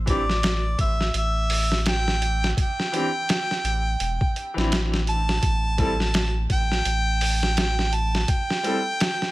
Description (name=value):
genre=trip hop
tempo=84 BPM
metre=4/4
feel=swing 59% on 16ths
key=unclear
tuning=A4 = 439 Hz
part: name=warm sub bass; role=bass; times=0.0-8.3 s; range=E1 to A1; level=-24 LUFS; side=equal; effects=none
part: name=warm harmonica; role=melody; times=0.1-9.3 s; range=D5 to A5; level=-26 LUFS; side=right 1 dB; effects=vintage 12-bit sampler grit, tape echo
part: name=bright upright piano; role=accompaniment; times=0.1-8.8 s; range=E3 to A4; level=-29 LUFS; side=left 1 dB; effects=tremolo
part: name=boom bap sampler-style drum kit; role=drums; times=0.1-9.3 s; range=hi-hat, kick drum, snare drum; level=-24 LUFS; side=equal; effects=none
room=studio reverb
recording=none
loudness=-21 LUFS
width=side -18 dB against mid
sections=0.0-9.3 A section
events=none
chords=0.0 Cadd9/A; 5.4 A7(no3)